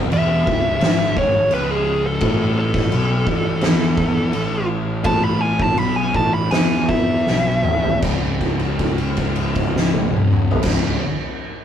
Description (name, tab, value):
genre	stoner and doom metal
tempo	78-86 BPM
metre	4/4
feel	straight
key	C# minor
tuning	A4 = 440 Hz
part	thick fuzz guitar	riff	0.0-11.0 s	C#2 to E3	-25 LUFS	left 2 dB	distortion
part	thick fuzz guitar	riff	0.0-11.0 s	C#2 to E3	-26 LUFS	right 1 dB	distortion
part	fuzz picked electric bass	bass	0.0-11.0 s	C#1 to E2	-24 LUFS	right 1 dB	overdrive, tube saturation
part	fuzz lead guitar	melody	0.1-8.0 s	G#4 to B5	-21 LUFS	equal	distortion
part	oversized low-tuned drum kit	drums	0.1-10.8 s	crash cymbal, kick drum, snare drum, toms	-20 LUFS	equal	none
room	moderate small room reverb, RT60 0.5 s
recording	rough rehearsal-room recording, tube saturation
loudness	-16 LUFS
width	side -9 dB against mid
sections	0.0-8.0 A section; 8.0-11.1 B section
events	lead electric guitar solo 0.0-8.0; slowing down 2.2-8.0; drum fill 7.3-8.0; held note 8.0-10.6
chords	0.0 C#m; 2.2 A5; 8.0 C#5